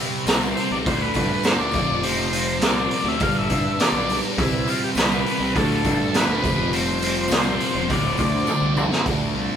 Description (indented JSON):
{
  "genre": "psychedelic rock",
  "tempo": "102 BPM",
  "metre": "4/4",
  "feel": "straight",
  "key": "D dorian",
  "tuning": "A4 = 440 Hz",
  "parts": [
    { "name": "dark studio string section", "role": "sustained chords", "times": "0.0-9.6 s", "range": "E3 to A5", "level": "-32 LUFS", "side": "right 1 dB", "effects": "none" },
    { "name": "thick fuzz guitar", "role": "riff", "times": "0.0-9.6 s", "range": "D2 to C4", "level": "-24 LUFS", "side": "left 1 dB", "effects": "distortion, phaser" },
    { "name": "tambourine", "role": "percussion", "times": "0.1-9.0 s", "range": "none", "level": "-40 LUFS", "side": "left 6 dB", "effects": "none" },
    { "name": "fuzz picked electric bass", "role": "bass", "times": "0.3-9.5 s", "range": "D1 to G2", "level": "-28 LUFS", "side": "equal", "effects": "overdrive" },
    { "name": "raw garage drum kit", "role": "drums", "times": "0.3-9.2 s", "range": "hi-hat, kick drum, snare drum, toms", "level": "-22 LUFS", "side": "equal", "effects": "none" },
    { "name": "combo organ", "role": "melody", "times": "0.6-8.7 s", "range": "E4 to F5", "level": "-26 LUFS", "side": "left 1 dB", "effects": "none" }
  ],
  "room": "moderate stone room reverb, RT60 1.0 s",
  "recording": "band playing live in one room",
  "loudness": "-18 LUFS",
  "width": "side -8 dB against mid",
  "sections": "0.0-9.1 A section",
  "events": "drum fill 8.5-9.1",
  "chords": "0.0 Cmaj7; 0.9 Dm; 1.7 Fsus2; 3.2 G; 4.4 Cmaj7; 5.6 Dm; 6.4 Fsus2; 7.9 Dm7; 9.1 Dm"
}